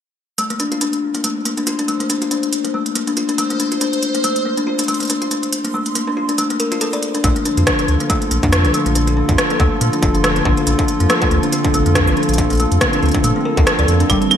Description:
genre	IDM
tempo	140 BPM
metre	4/4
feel	swing 56% on 16ths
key	Bb major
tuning	A4 = 438 Hz
part	kalimba	arpeggios	0.4-14.4 s	G3 to D5	-19 LUFS	left 2 dB	low-pass filter, ping-pong delay
part	industrial drum kit	drums	0.4-14.4 s	claves, hi-hat, rim click	-20 LUFS	right 1 dB	gated reverb
part	backwards swelling texture	texture	1.7-7.2 s	C5	-27 LUFS	right 2 dB	built-in reverb, lush chorus
part	hollow soft pad	sustained chords	7.5-14.4 s	D3 to A4	-20 LUFS	right 1 dB	chorus
part	warm sub bass	bass	7.2-14.2 s	F1 to Bb2	-17 LUFS	equal	tube saturation
part	electronic kick drum	drums	7.2-14.2 s	none	-20 LUFS	equal	distortion
room	wet lush hall reverb, RT60 2.0 s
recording	bright 1980s-style digital production, lossy compression artefacts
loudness	-14 LUFS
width	side -9 dB against mid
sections	0.4-7.2 A section; 7.2-14.4 B section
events	filter sweep on kalimba 0.4-7.2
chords	0.4 Bb; 7.2 Bbmaj7

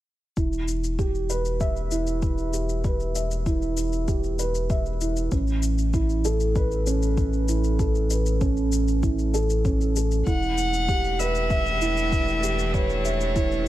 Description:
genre	piano and strings electronica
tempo	97 BPM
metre	4/4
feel	straight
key	E dorian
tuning	A4 = 436 Hz
part	felt-muted upright piano	riff	0.4-13.7 s	C#4 to E5	-27 LUFS	right 3 dB	digital delay
part	warm sub bass	bass	0.4-13.7 s	E1 to A1	-26 LUFS	left 1 dB	sidechain pumping
part	electronic kick drum	drums	0.4-13.5 s	none	-25 LUFS	left 1 dB	none
part	shaker	drums	0.4-13.6 s	none	-37 LUFS	left 6 dB	none
part	warm violin	melody	10.3-13.7 s	C#5 to F#5	-26 LUFS	equal	none
part	warm string quartet	sustained chords	10.3-13.7 s	E3 to G4	-33 LUFS	left 1 dB	sidechain pumping
room	studio reverb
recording	none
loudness	-22 LUFS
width	side -14 dB against mid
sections	0.4-13.7 A section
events	none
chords	0.4 Em; 5.3 Aadd9; 10.3 Em

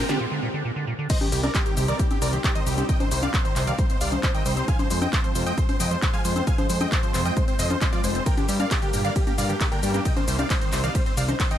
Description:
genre	uplifting trance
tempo	134 BPM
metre	4/4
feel	straight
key	C minor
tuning	A4 = 440 Hz
part	big supersaw lead	melody	0.0-11.6 s	F4 to Ab5	-30 LUFS	right 1 dB	cassette tape, sidechain pumping, ping-pong delay
part	liquid acid bass	arpeggios	0.0-11.6 s	Bb2 to C4	-32 LUFS	right 2 dB	chorus, cassette tape, sidechain pumping, ping-pong delay
part	punchy analog drum machine	drums	0.1-11.6 s	congas, crash cymbal, handclaps, hi-hat, ride cymbal, shaker, snare drum	-28 LUFS	left 2 dB	none
part	plucky unison lead	second line	1.1-11.6 s	G4 to Ab5	-35 LUFS	equal	analog chorus, sidechain pumping, ping-pong delay
part	electronic kick drum	drums	1.1-11.5 s	none	-24 LUFS	equal	none
part	fat analog bass	bass	1.3-11.3 s	F1 to G2	-26 LUFS	equal	tube saturation, sidechain pumping
room	digital ambience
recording	none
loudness	-21 LUFS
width	side -11 dB against mid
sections	0.0-1.1 A section; 1.1-11.6 B section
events	build-up 0.0-1.1; drum fill 0.0; break 0.2-1.1; drop 1.1-11.6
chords	0.0 Fm; 1.1 Cm; 4.7 Fm; 8.3 Gm; 10.1 Cm

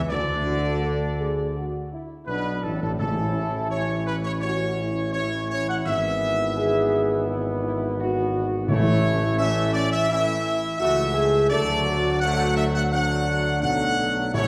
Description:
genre	classical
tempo	84 BPM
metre	4/4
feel	straight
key	A major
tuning	A4 = 439 Hz
part	dark French horn section	sustained chords	0.0-14.5 s	C#4 to A4	-30 LUFS	equal	none
part	warm trombone section	sustained chords	0.0-14.5 s	A2 to C#4	-33 LUFS	equal	none
part	warm trumpet section	melody	0.1-14.5 s	A4 to F#5	-28 LUFS	equal	none
part	mellow tuba	bass	0.1-14.5 s	G#1 to D2	-29 LUFS	equal	none
part	timpani	percussion	3.0-4.0, 8.7-9.7, 14.3-14.5 s	A2	-29 LUFS	equal	none
room	wet recital hall reverb, RT60 1.7 s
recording	recorded in a church or concert hall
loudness	-24 LUFS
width	mono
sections	0.0-14.5 A section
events	none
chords	0.1 D5; 3.0 A; 5.9 E/G#; 8.7 A; 11.5 D

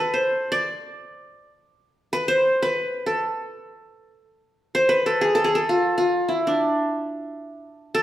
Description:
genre	Turkish makam ensemble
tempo	free time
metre	none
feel	none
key	D makam nikriz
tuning	A4 = 442 Hz
part	qanun	solo	0.0-8.0 s	D4 to D5	-20 LUFS	equal	none
room	wet large studio reverb, RT60 1.3 s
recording	band playing live in one room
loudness	-20 LUFS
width	side -13 dB against mid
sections	0.0-8.0 A section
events	none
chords	none

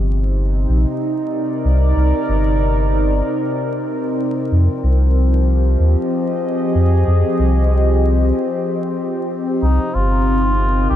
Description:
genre	ambient dub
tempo	94 BPM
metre	4/4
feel	swing 59% on 16ths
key	C minor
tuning	A4 = 440 Hz
part	warbly tape-like pad	sustained chords	0.0-11.0 s	C3 to Eb5	-19 LUFS	equal	chorus, built-in reverb
part	soft dub sub bass	bass	0.0-11.0 s	G1 to F2	-14 LUFS	equal	none
part	trumpet with cup mute	melody	9.6-11.0 s	Eb4 to G4	-21 LUFS	equal	dub echo
room	light reverb, small room reverb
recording	dark, warm production, vinyl crackle, nothing above 10.7 kHz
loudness	-15 LUFS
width	side -11 dB against mid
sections	0.0-11.0 A section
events	break 8.3-9.6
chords	0.0 Cm9; 4.5 Fm7; 9.6 Cm7

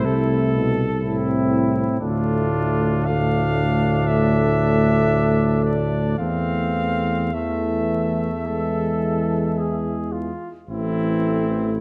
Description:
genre	classical, hymn-like piece for brass band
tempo	51-62 BPM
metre	4/4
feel	rubato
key	A minor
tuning	A4 = 440 Hz
part	clear cornet	melody	0.0-11.8 s	E4 to F5	-29 LUFS	equal	none
part	clear flugelhorn	second line	0.0-11.8 s	A3 to A4	-32 LUFS	equal	none
part	clear trombone	accompaniment	0.0-11.8 s	A2 to E3	-27 LUFS	equal	none
part	warm euphonium	accompaniment	0.0-11.8 s	G#3 to C4	-28 LUFS	equal	none
part	warm tuba	bass	0.0-11.8 s	A1 to E2	-26 LUFS	equal	none
room	moderate scoring stage reverb, RT60 1.5 s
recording	dark, warm production, vinyl crackle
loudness	-21 LUFS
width	mono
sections	0.0-11.8 A section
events	none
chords	0.0 Am/C; 2.0 Dm; 6.2 Am/E; 8.5 E; 10.7 Am

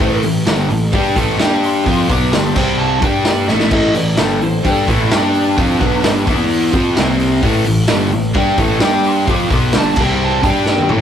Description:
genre	hard rock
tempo	129 BPM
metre	4/4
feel	straight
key	A minor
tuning	A4 = 440 Hz
part	lead guitar through a small cranked amp	melody	0.0-11.0 s	D4 to D6	-22 LUFS	right 1 dB	overdrive
part	crunchy overdriven guitar	riff	0.0-11.0 s	G2 to G4	-18 LUFS	left 3 dB	none
part	overdriven semi-hollow guitar	riff	0.0-11.0 s	G2 to G4	-19 LUFS	equal	none
part	sludgy distorted guitar	riff	0.0-11.0 s	G2 to G4	-22 LUFS	right 5 dB	overdrive
part	fuzz picked electric bass	bass	0.0-11.0 s	G1 to G2	-22 LUFS	equal	overdrive
part	raw garage drum kit	drums	0.0-11.0 s	crash cymbal, hi-hat, kick drum, snare drum, toms	-17 LUFS	equal	none
room	moderate small room reverb, RT60 0.5 s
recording	rough rehearsal-room recording, tube saturation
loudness	-12 LUFS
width	side -9 dB against mid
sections	0.0-11.0 A section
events	lead electric guitar solo 0.0-11.0; drum fill 3.5, 10.7-11.0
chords	0.0 A5; 1.4 G5; 1.9 G7; 2.6 C5; 3.0 G5; 3.5 A5; 5.1 G5; 5.6 G7; 6.3 E5; 6.7 F5; 7.0 C5; 7.4 A5; 8.8 G5; 9.3 G9; 10.0 C5; 10.4 G5

